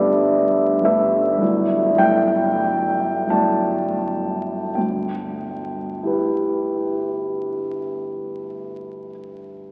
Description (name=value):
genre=classical, impressionist solo piano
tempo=38-58 BPM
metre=5/4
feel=rubato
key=G major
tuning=A4 = 440 Hz
part: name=clear concert grand piano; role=solo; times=0.0-9.7 s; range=G1 to A5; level=-21 LUFS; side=equal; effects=none
room=wet cathedral reverb, RT60 5.0 s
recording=very old 78 rpm record, vinyl crackle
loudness=-21 LUFS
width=mono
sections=0.0-4.7 A section; 4.7-9.7 B section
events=slowing down 0.0-4.7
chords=0.0 Gadd9; 1.4 Em11/G; 4.7 G6